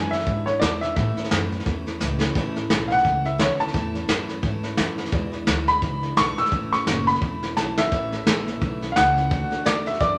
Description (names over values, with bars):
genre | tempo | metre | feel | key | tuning
rockabilly | 172 BPM | 4/4 | swing 59% on 8ths | A major | A4 = 442 Hz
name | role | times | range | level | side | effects
clear upright piano | melody | 0.0-10.2 s | C#5 to E6 | -25 LUFS | equal | none
picked steel-string acoustic guitar | accompaniment | 0.0-10.2 s | E2 to F#4 | -34 LUFS | equal | none
upright bass | bass | 0.0-10.2 s | E1 to A2 | -32 LUFS | equal | none
soft brush drum kit | drums | 0.1-10.1 s | hi-hat, kick drum, snare drum | -27 LUFS | equal | none
room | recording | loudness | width
wet large studio reverb, RT60 0.8 s | none | -23 LUFS | mono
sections
0.0-2.4 A section; 2.4-10.2 B section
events
drum fill 2.0-2.4, 7.6-7.9; upright piano solo 2.4-10.2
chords
0.0 E7; 1.0 A; 5.1 E7; 6.5 A; 9.3 D